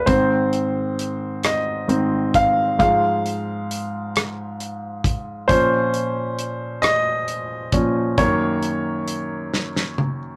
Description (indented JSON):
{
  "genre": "six-eight pop ballad",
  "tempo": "44 BPM (dotted quarters)",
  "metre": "6/8",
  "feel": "straight",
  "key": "unclear",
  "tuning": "A4 = 440 Hz",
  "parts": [
    { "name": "clear baby grand piano", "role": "accompaniment", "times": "0.0-10.4 s", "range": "Gb2 to F5", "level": "-22 LUFS", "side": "equal", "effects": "none" },
    { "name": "damped 70s drum kit", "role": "drums", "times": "0.1-10.2 s", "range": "hi-hat, kick drum, rim click, snare drum, toms", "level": "-26 LUFS", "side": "equal", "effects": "none" }
  ],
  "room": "moderate studio ambience, RT60 0.5 s",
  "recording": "rough rehearsal-room recording",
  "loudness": "-21 LUFS",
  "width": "mono",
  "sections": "0.0-10.4 A section",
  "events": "grand piano solo 0.0-10.4; drum fill 9.5-10.4",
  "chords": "0.1 Ab; 2.8 Fm/Ab; 5.5 Bbmadd9; 8.2 Gb6"
}